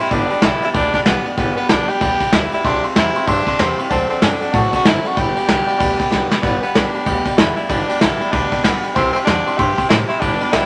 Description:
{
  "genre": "rockabilly",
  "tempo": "190 BPM",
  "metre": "4/4",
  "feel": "swing 61% on 8ths",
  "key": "G major",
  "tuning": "A4 = 440 Hz",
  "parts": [
    { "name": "raspy tenor saxophone", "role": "melody", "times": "0.0-10.7 s", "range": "B3 to G4", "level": "-22 LUFS", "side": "equal", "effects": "none" },
    { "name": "bright upright piano", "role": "accompaniment", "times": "0.0-10.7 s", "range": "D5 to D6", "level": "-26 LUFS", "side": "equal", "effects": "none" },
    { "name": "picked steel-string acoustic guitar", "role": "accompaniment", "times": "0.0-10.7 s", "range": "G2 to A4", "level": "-27 LUFS", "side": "equal", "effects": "none" },
    { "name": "upright bass", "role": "bass", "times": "0.1-10.7 s", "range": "F#1 to A2", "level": "-28 LUFS", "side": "equal", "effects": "none" },
    { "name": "soft brush drum kit", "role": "drums", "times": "0.1-10.6 s", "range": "kick drum, ride cymbal, snare drum", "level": "-20 LUFS", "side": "equal", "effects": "none" }
  ],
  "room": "moderate studio reverb, RT60 0.9 s",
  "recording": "none",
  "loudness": "-17 LUFS",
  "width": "mono",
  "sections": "0.0-6.4 A section; 6.4-10.7 A section",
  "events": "drum fill 6.1-6.4",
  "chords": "0.1 G; 2.6 C; 3.9 D7; 5.2 G; 9.0 C"
}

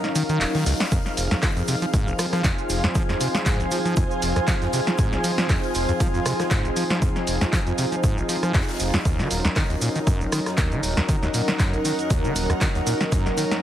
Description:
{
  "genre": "acid house",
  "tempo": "118 BPM",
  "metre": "4/4",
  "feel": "swing 55% on 16ths",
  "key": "unclear",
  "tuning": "A4 = 440 Hz",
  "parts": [
    { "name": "warm analog pad", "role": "sustained chords", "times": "0.0-13.6 s", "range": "F3 to Bb4", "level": "-29 LUFS", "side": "equal", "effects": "chorus, sidechain pumping" },
    { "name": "punchy analog drum machine", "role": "drums", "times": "0.0-13.6 s", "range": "handclaps, hi-hat, rim click, shaker, snare drum", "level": "-27 LUFS", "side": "equal", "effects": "none" },
    { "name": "granular cloud pad", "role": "texture", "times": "0.0-13.6 s", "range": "Eb4 to Ab5", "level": "-28 LUFS", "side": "equal", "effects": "built-in reverb, sidechain pumping" },
    { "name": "acid bass, saw", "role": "riff", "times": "0.2-13.5 s", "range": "Eb1 to F3", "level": "-26 LUFS", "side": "equal", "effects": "overdrive, tape echo" },
    { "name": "modern studio drum kit", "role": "drums", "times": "0.2-13.5 s", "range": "hi-hat, shaker, snare drum", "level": "-38 LUFS", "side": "left 1 dB", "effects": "high-pass filter on hats, high-pass filter on snare, high-pass filter on perc, high-pass filter on room" },
    { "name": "electronic kick drum", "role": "drums", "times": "0.9-13.2 s", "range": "none", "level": "-23 LUFS", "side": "equal", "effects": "none" }
  ],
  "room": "light reverb",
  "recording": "heavily compressed radio sound",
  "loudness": "-20 LUFS",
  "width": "side -11 dB against mid",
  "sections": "0.0-13.6 A section",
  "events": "break 0.0-0.9",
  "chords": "0.0 Ebm7; 0.9 Fm7; 9.1 Ebm7"
}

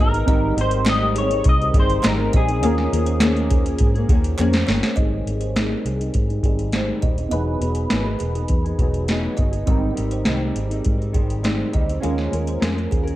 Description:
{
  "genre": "indie pop, bedroom pop",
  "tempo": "102 BPM",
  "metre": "4/4",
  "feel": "straight",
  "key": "Ab major",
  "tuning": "A4 = 440 Hz",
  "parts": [
    { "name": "electric guitar through a small old amp", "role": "melody", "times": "0.0-9.3 s", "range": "Ab4 to Eb5", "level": "-26 LUFS", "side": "left 2 dB", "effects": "analog chorus, low-pass filter" },
    { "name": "kalimba", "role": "second line", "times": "0.0-13.1 s", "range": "Ab4 to D#5", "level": "-30 LUFS", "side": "right 4 dB", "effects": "analog chorus, analog delay" },
    { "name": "nylon-string guitar", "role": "accompaniment", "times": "0.0-13.2 s", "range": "Ab2 to Bb4", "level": "-26 LUFS", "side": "left 3 dB", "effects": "analog chorus, vibrato effect, low-pass filter" },
    { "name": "soft electric-piano-like synth keys", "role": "accompaniment", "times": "0.0-13.2 s", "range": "B3 to G5", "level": "-29 LUFS", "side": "right 4 dB", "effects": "chorus, phaser, cassette tape, low-pass filter" },
    { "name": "vintage muted fingered electric bass", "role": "bass", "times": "0.0-13.2 s", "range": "Eb1 to Ab2", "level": "-24 LUFS", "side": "equal", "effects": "none" },
    { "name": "soft vintage rhythm box", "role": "drums", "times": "0.1-13.2 s", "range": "hi-hat, kick drum, snare drum", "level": "-20 LUFS", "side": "equal", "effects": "overdrive" },
    { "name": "group handclap", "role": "percussion", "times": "0.9-4.5 s", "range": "none", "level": "-34 LUFS", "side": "right 4 dB", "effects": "none" }
  ],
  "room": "light reverb",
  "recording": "none",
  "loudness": "-18 LUFS",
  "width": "side -15 dB against mid",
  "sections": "0.0-5.0 A section; 5.0-13.2 B section",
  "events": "drum fill 4.4-5.0; filter sweep 5.0-13.2",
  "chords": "0.3 Abmaj7; 2.6 Eb7sus4; 5.0 Abmaj7; 7.3 Emaj9; 9.7 Abmaj7; 12.0 Eb7sus4"
}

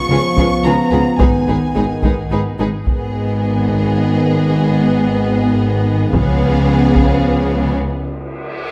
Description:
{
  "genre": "cinematic, epic orchestral film score",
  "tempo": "110 BPM",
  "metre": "3/4",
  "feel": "straight",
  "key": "G# minor",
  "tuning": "A4 = 440 Hz",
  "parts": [
    { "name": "rich chamber violin section", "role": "melody", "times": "0.0-7.7 s", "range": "D#5 to C#6", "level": "-28 LUFS", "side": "equal", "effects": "none" },
    { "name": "mellow French horn section", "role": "sustained chords", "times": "0.0-7.7 s", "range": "D#3 to B3", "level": "-22 LUFS", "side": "equal", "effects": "none" },
    { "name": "warm symphonic violin section", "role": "second line", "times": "0.1-7.8 s", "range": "G#4 to B4", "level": "-28 LUFS", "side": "equal", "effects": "none" },
    { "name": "rich symphonic viola section", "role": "accompaniment", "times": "0.1-7.8 s", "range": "G#3 to E#4", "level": "-24 LUFS", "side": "equal", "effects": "none" },
    { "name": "clear symphonic double bass section", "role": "bass", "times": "0.1-7.7 s", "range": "G#1 to C#2", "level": "-22 LUFS", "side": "equal", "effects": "none" },
    { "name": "rich symphonic cello section", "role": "bass", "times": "0.1-7.7 s", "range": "G#2 to C#3", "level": "-22 LUFS", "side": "equal", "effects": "none" },
    { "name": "taiko ensemble", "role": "drums", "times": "0.4-7.5 s", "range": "none", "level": "-21 LUFS", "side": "equal", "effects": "none" },
    { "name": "cymbal swell", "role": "sound effects", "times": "8.1-8.7 s", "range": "none", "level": "-36 LUFS", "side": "equal", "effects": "none" }
  ],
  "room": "moderate scoring stage reverb, RT60 1.6 s",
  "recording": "none",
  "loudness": "-15 LUFS",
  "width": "mono",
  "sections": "0.0-2.9 A section; 2.9-8.7 B section",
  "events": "break 7.8-8.7; cymbal swell 8.1-8.7",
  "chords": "0.0 C#7; 1.2 G#m; 6.1 C#7; 7.8 N.C."
}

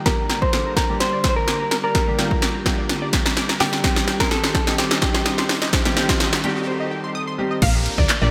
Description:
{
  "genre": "dance-pop",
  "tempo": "127 BPM",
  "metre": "4/4",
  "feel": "straight",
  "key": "unclear",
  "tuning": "A4 = 438 Hz",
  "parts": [
    { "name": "airy breathy pad", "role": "sustained chords", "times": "0.0-8.3 s", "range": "D3 to C5", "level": "-34 LUFS", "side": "equal", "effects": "chorus, sidechain pumping, low-pass filter" },
    { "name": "direct-recorded clean electric guitar", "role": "melody", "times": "0.1-7.1 s", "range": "G4 to C5", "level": "-27 LUFS", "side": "equal", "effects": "lush chorus, low-pass filter, digital delay" },
    { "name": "warm concert grand piano", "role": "accompaniment", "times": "0.1-8.3 s", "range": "D3 to A4", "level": "-29 LUFS", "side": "equal", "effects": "subtle chorus, sidechain pumping, low-pass filter" },
    { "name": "tight sequenced synth", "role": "arpeggios", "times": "0.1-7.6 s", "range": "G4 to Eb6", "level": "-34 LUFS", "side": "equal", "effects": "chorus, sidechain pumping, low-pass filter, digital delay" },
    { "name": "punchy analog drum machine", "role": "drums", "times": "0.1-8.2 s", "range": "crash cymbal, handclaps, hi-hat, kick drum, snare drum", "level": "-22 LUFS", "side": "equal", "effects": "gated reverb" },
    { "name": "riser and downlifter", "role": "sound effects", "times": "3.7-8.3 s", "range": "none", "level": "-35 LUFS", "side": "equal", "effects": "none" },
    { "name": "unison pluck", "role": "melody", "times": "7.6-8.3 s", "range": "D5 to F5", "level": "-27 LUFS", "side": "equal", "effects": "ensemble chorus, sidechain pumping" },
    { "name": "solid FM bass", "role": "bass", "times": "7.6-8.3 s", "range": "Bb1 to D2", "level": "-22 LUFS", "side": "equal", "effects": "sidechain pumping" }
  ],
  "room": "moderate lush hall reverb, RT60 2.0 s, digital ambience",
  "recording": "bright 1980s-style digital production",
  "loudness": "-20 LUFS",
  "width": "mono",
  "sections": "0.0-7.6 A section",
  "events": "build-up 0.0-7.6; drum fill 0.0-6.7; filter sweep 0.0-7.6; break 6.7-7.6",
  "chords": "0.1 Gm; 3.8 Cm; 7.6 Bb"
}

